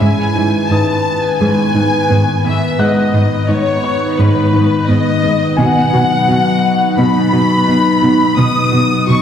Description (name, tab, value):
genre	cinematic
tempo	86 BPM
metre	4/4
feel	straight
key	unclear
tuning	A4 = 441 Hz
part	clear symphonic violin section	melody	0.0-9.2 s	B4 to D#6	-17 LUFS	left 3 dB	none
part	evolving wavetable pad	sustained chords	0.0-9.2 s	D#3 to B4	-16 LUFS	equal	chorus, built-in reverb, phaser
part	thumb-piano-like synth pluck	arpeggios	0.0-9.2 s	G#3 to F#4	-19 LUFS	equal	chorus
part	clear symphonic cello section	bass	0.0-9.2 s	G#2 to B2	-16 LUFS	right 1 dB	none
part	warm concert grand piano	texture	0.0-9.2 s	B4 to F#6	-25 LUFS	left 3 dB	tape echo
room	wet scoring stage reverb, RT60 1.8 s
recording	heard from further back in the room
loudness	-11 LUFS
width	side -8 dB against mid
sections	0.0-9.2 A section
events	none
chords	0.0 G#m; 5.6 B